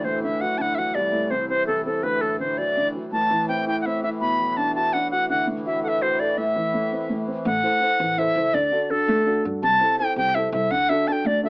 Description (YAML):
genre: celtic folk, Celtic jig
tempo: 111 BPM (dotted quarters)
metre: 6/8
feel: straight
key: A dorian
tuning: A4 = 439 Hz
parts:
  - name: bright reedy wooden flute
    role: melody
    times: 0.0-11.5 s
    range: A4 to B5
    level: -21 LUFS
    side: equal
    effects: none
  - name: dark upright piano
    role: accompaniment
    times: 0.0-11.5 s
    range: C2 to C5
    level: -26 LUFS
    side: right 1 dB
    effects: none
  - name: musette accordion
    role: drone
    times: 0.0-7.5 s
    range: A2 to E3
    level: -30 LUFS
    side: equal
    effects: none
  - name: upright bass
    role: bass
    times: 7.5-11.5 s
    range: A1 to G2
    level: -34 LUFS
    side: equal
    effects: none
room: moderate studio reverb, RT60 0.6 s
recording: AM radio sound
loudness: -20 LUFS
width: side -26 dB against mid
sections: 0.0-7.5 A section; 7.5-11.5 A section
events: none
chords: 0.0 D; 1.0 Am/C; 2.0 D; 3.1 Am; 4.2 Bm; 5.3 D; 6.4 Am; 8.5 D; 9.6 Am/C; 10.7 D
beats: 0.41 | 0.95 1.50 | 2.04 2.58 | 3.12 3.67 | 4.21 4.75 | 5.29 5.83 | 6.38 6.92 | 7.46 8.00 | 8.54 9.08 | 9.62 10.16 | 10.71 11.25